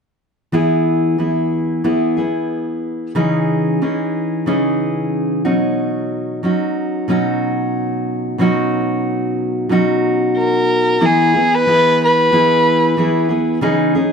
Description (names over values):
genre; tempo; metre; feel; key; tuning
pop; 92 BPM; 4/4; straight; unclear; A4 = 438 Hz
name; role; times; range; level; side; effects
fingerpicked steel-string acoustic guitar; accompaniment; 0.5-14.1 s; B2 to G#4; -16 LUFS; equal; none
warm violin; melody; 10.4-13.3 s; G#4 to B4; -14 LUFS; equal; ping-pong delay
room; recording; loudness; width
moderate studio reverb, RT60 0.6 s; none; -14 LUFS; side -6 dB against mid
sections
0.5-11.0 A section; 11.0-14.1 B section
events
none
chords
0.5 E; 3.2 C#madd9; 5.5 Badd9; 11.0 E